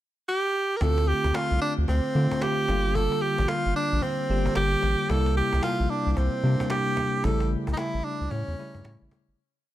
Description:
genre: R&B, new jack swing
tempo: 112 BPM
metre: 4/4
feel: swing 62% on 16ths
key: D minor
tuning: A4 = 440 Hz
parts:
  - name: clear tenor saxophone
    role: melody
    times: 0.3-9.1 s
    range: C4 to Bb4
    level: -27 LUFS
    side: right 2 dB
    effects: ping-pong delay
  - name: bell-like tine electric piano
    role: accompaniment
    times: 0.8-9.4 s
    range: C3 to G4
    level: -29 LUFS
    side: left 1 dB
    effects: medium stereo tremolo
  - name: round analog bass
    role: bass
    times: 0.8-9.4 s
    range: G1 to D3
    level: -25 LUFS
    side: equal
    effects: none
  - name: cajon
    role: drums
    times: 0.8-9.3 s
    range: none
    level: -36 LUFS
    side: equal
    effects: none
room: small room ambience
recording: none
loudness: -23 LUFS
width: side -14 dB against mid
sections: 0.0-0.8 pickup bar; 0.8-9.4 verse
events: fade-out 7.2-9.4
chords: 0.0 N.C.; 0.8 Dm7; 2.7 Gm7; 5.1 C7; 7.2 A7

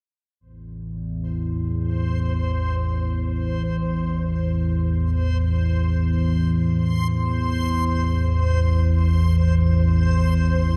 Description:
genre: dark ambient drone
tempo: free time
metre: none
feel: none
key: A minor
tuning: A4 = 440 Hz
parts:
  - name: analog drone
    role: drone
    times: 0.7-10.8 s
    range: A1 to E2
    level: -22 LUFS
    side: equal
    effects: subtle chorus
  - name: backwards swelling texture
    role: texture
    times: 1.9-10.8 s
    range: C5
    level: -33 LUFS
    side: equal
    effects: built-in reverb
room: wet cathedral reverb, RT60 5.2 s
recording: in a vast, echoing space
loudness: -22 LUFS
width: mono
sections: 0.4-10.8 A section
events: none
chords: 0.4 Am

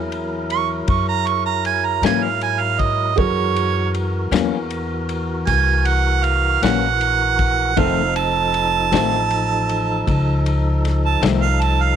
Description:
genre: slow blues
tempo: 52 BPM (dotted quarters)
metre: 12/8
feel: straight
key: unclear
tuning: A4 = 440 Hz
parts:
  - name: dark baby grand piano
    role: accompaniment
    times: 0.0-12.0 s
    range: Eb4 to C5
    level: -29 LUFS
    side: right 9 dB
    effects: none
  - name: tonewheel organ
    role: sustained chords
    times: 0.0-12.0 s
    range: Fb3 to Bb4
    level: -25 LUFS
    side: left 2 dB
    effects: slow rotary speaker
  - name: upright bass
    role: bass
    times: 0.0-12.0 s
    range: F1 to Ab2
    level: -21 LUFS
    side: left 1 dB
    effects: none
  - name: warm soul drum kit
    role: drums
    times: 0.1-11.8 s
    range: kick drum, ride cymbal, snare drum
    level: -26 LUFS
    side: left 3 dB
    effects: none
  - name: clear harmonica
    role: second line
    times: 0.5-12.0 s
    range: Db5 to Db6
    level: -19 LUFS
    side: right 10 dB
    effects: overdrive
  - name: electric guitar through a small old amp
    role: accompaniment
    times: 2.0-11.5 s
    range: F2 to Db4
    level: -23 LUFS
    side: left 12 dB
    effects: harmonic tremolo
room: small room ambience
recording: 1960s-style stereo with parts hard left and right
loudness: -16 LUFS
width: side -8 dB against mid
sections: 0.0-12.0 A section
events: harmonica solo 0.0-12.0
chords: 0.0 Gb7; 7.8 F7

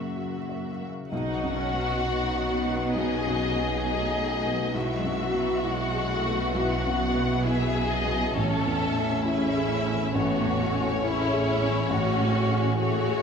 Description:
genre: cinematic, emotional film score for orchestra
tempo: 67 BPM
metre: 4/4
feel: rubato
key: unclear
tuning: A4 = 441 Hz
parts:
  - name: warm studio violin section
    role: melody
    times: 0.0-13.2 s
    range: C#5 to F#5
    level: -32 LUFS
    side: left 3 dB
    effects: none
  - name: dark symphonic violin section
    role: second line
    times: 0.0-13.2 s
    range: E4 to A4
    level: -31 LUFS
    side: left 1 dB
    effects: none
  - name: felt-muted upright piano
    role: accompaniment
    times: 0.0-13.2 s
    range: A1 to Fb5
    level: -31 LUFS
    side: equal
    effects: none
  - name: warm symphonic viola section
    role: accompaniment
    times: 0.0-13.2 s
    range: F#3 to D#4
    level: -33 LUFS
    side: right 2 dB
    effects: none
  - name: concert harp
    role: arpeggios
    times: 0.0-13.2 s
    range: Gb2 to G#4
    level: -35 LUFS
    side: left 5 dB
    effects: none
  - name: rich symphonic cello section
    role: bass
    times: 0.0-13.2 s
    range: Gb2 to B2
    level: -33 LUFS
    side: right 4 dB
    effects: none
  - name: warm French horn section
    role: sustained chords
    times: 1.1-13.2 s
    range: F#3 to G#4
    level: -32 LUFS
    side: left 3 dB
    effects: none
  - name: dark symphonic double bass section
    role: bass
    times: 1.1-13.2 s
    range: A1 to B1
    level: -35 LUFS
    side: right 4 dB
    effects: none
room: wet scoring stage reverb, RT60 1.5 s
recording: minimal, uncompressed stereo recording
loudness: -24 LUFS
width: side -6 dB against mid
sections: 0.0-1.1 A section; 1.1-13.2 A section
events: none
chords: 0.0 Gb7; 1.1 B; 4.7 Eadd9/B; 8.4 Amaj7

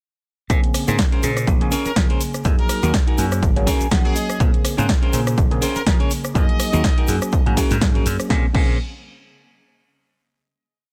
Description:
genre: filtered disco house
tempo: 123 BPM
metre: 4/4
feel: swing 56% on 16ths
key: Bb minor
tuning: A4 = 445 Hz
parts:
  - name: overdriven reed electric piano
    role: accompaniment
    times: 0.5-8.7 s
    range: Db3 to C5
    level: -28 LUFS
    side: equal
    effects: phaser, vintage 12-bit sampler grit, sidechain pumping
  - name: slap bass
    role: bass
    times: 0.5-8.8 s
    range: Ab1 to F3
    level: -25 LUFS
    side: equal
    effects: sidechain pumping
  - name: electronic kick drum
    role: drums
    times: 0.5-8.7 s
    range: none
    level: -21 LUFS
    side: equal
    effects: none
  - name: punchy analog drum machine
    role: drums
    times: 0.5-8.7 s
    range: cabasa, crash cymbal, hi-hat, rim click, snare drum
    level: -28 LUFS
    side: equal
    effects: sidechain pumping on hats, sidechain pumping on perc, sidechain pumping on cymbals
  - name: egg shaker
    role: percussion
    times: 0.5-8.3 s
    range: none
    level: -38 LUFS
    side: equal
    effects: none
  - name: clean electric guitar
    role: riff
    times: 0.9-8.8 s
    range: Db4 to Ab5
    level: -28 LUFS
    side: equal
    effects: sidechain pumping
  - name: brilliant trumpet section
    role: melody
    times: 1.9-7.0 s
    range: Ab4 to Eb5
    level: -32 LUFS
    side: equal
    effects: vintage 12-bit sampler grit, sidechain pumping, tape echo
room: little or no reverb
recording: none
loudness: -19 LUFS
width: mono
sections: 0.5-8.3 drop; 8.3-10.3 final chord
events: drop 0.5-8.3; clean electric guitar fill 3.4-4.4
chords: 0.5 Bbm9; 2.4 Gb69; 3.4 Ab9sus4; 4.4 Bbm9; 6.4 Gb69; 7.3 Ab9sus4; 8.3 Bbm9

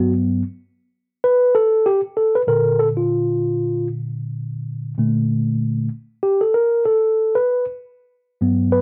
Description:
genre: hip hop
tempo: 96 BPM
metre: 4/4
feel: swing 58% on 16ths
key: unclear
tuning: A4 = 441 Hz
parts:
  - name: mellow tine electric piano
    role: solo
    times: 0.0-8.8 s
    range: G2 to B4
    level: -19 LUFS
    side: equal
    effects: cassette tape
room: light reverb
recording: home recording on cassette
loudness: -19 LUFS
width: mono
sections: 0.0-8.8 A section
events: tine electric piano solo 0.0-8.8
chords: 0.0 Gmaj7; 2.5 Bbmaj7; 7.5 Gmaj7

